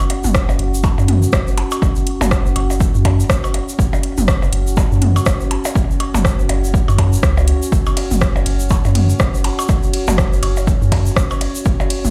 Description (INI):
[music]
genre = minimal techno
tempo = 122 BPM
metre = 4/4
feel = swing 58% on 16ths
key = unclear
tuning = A4 = 442 Hz
[part]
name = electronic percussion blips and toms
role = percussion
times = 0.0-12.1 s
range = none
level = -25 LUFS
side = equal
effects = dub echo
[part]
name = tube shaker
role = percussion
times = 0.0-12.1 s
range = none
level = -33 LUFS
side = equal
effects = none
[part]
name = warbly tape-like pad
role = texture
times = 0.0-12.1 s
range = C#4 to F#5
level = -27 LUFS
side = equal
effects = chorus, built-in reverb, sidechain pumping
[part]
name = house drum kit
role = drums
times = 0.1-12.0 s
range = hi-hat, ride cymbal, rim click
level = -25 LUFS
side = equal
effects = overdrive
[part]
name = punchy sub bass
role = bass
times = 0.2-12.1 s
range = F#1 to F#2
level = -20 LUFS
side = equal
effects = tube saturation, sidechain pumping
[part]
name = electronic kick drum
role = drums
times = 0.3-11.8 s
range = none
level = -19 LUFS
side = equal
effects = overdrive
[sound]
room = light reverb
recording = played on a big sound system in a bare room, stone room reverb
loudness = -16 LUFS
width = mono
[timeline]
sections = 0.0-12.1 A section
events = none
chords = 0.0 F#5